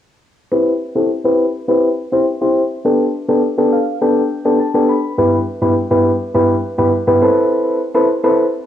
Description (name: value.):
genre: pop.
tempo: 103 BPM.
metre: 4/4.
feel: straight.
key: C major.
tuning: A4 = 441 Hz.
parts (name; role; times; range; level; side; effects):
soft electric-piano-like synth keys; accompaniment; 0.5-8.4 s; G2 to B5; -13 LUFS; left 1 dB; chorus, low-pass filter.
room: wet spring reverb, RT60 1.9 s, digital ambience.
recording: home recording on cassette, small room ambience.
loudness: -13 LUFS.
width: side -10 dB against mid.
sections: 0.5-8.7 A section.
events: filter sweep on synth keys 0.5-8.7; synth keys fill 3.4-5.2.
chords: 0.5 Cmaj7; 2.9 Gadd9; 5.2 Em/G; 7.2 Amadd9.